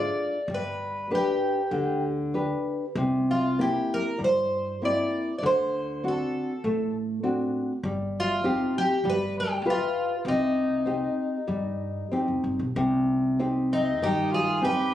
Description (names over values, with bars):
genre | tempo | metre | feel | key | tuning
fado-style ballad | 98 BPM | 4/4 | rubato | C harmonic minor | A4 = 440 Hz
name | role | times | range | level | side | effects
fingerpicked twelve-string acoustic guitar | melody | 0.0-14.9 s | Eb4 to D5 | -27 LUFS | equal | none
nylon-string guitar | accompaniment | 0.0-14.9 s | C3 to B4 | -27 LUFS | left 1 dB | none
upright bass | bass | 0.0-14.8 s | F1 to G2 | -35 LUFS | equal | none
accordion | second line | 13.7-14.9 s | C4 to G4 | -30 LUFS | right 4 dB | none
room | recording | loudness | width
light reverb | recorded on a phone in the room, club reverb, compression | -24 LUFS | side -12 dB against mid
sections
0.0-12.8 A section; 12.8-14.9 B section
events
none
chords
0.5 G; 3.0 C7; 5.4 D7; 7.8 Cm/G; 9.0 G7; 10.3 Cm